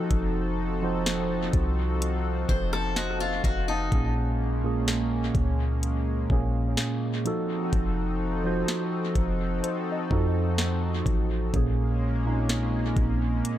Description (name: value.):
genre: contemporary R&B.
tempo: 63 BPM.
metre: 4/4.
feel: straight.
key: unclear.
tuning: A4 = 440 Hz.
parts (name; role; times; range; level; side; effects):
mellow tine electric piano; accompaniment; 0.0-13.6 s; Bb2 to A5; -28 LUFS; right 2 dB; phaser, dub echo.
chorused pulse-width pad; sustained chords; 0.0-13.6 s; F3 to A4; -34 LUFS; left 3 dB; sidechain pumping.
clean 808-style bass; bass; 0.1-13.4 s; F1 to F2; -28 LUFS; equal; none.
smooth R&B drum kit; drums; 0.1-13.6 s; hi-hat, kick drum, rim click, snare drum; -29 LUFS; equal; dub echo.
picked acoustic archtop guitar; arpeggios; 2.5-4.1 s; Eb4 to C5; -32 LUFS; left 3 dB; dub echo.
soft round pluck; texture; 9.6-12.2 s; C5 to Eb5; -39 LUFS; left 5 dB; none.
room: light reverb.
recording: echo-heavy mix.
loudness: -24 LUFS.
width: side -12 dB against mid.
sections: 0.0-13.6 A section.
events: none.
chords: 0.0 F7b9; 3.9 Bbm7; 7.3 F7b9; 11.5 Bbm7.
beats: | 0.11 1.06 2.01 2.96 | 3.92 4.87 5.82 6.78 | 7.73 8.68 9.63 10.58 | 11.54 12.49 13.44.